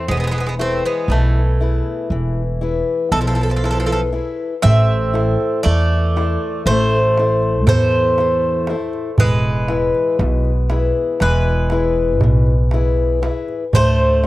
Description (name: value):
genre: greek folk, Greek bouzouki band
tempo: 119 BPM (eighths)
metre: 9/8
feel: straight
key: A harmonic minor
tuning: A4 = 440 Hz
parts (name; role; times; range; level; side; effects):
- Greek bouzouki; melody; 0.0-14.3 s; A3 to E5; -21 LUFS; equal; none
- Greek bouzouki; second line; 0.0-14.3 s; E3 to C4; -27 LUFS; right 4 dB; none
- upright bass; bass; 0.0-14.3 s; E1 to E2; -18 LUFS; equal; none
- fingerpicked acoustic archtop guitar; accompaniment; 0.1-14.3 s; B2 to C5; -22 LUFS; left 4 dB; none
- darbuka; percussion; 4.6-14.3 s; none; -19 LUFS; right 1 dB; none
room: little or no reverb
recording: dry, close 1970s-style studio recording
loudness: -15 LUFS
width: side -17 dB against mid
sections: 0.0-4.6 A section; 4.6-14.3 B section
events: none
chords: 0.1 E; 4.6 Am; 9.2 E; 13.7 D5